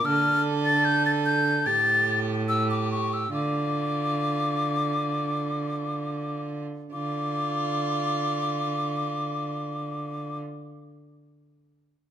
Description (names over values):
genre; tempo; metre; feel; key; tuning
classical, renaissance-style consort dance; 64-76 BPM; 4/4; straight; D minor; A4 = 440 Hz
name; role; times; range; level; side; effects
mellow concert flute; melody; 0.0-10.4 s; C#6 to A6; -26 LUFS; left 2 dB; none
warm violin; second line; 0.0-10.4 s; F4 to A4; -33 LUFS; right 7 dB; none
rich cello; bass; 0.0-10.4 s; A2 to D3; -28 LUFS; right 2 dB; none
room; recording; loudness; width
moderate recital hall reverb, RT60 1.8 s; none; -24 LUFS; side -10 dB against mid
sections
0.0-6.9 A section; 6.9-10.7 B section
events
slowing down 0.0-6.9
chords
0.1 D5; 1.7 Gsus2/A; 3.3 Dm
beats
| 0.06 0.86 1.66 2.49 | 3.33 4.20 5.08 5.99 | 6.93 7.87 8.81 9.75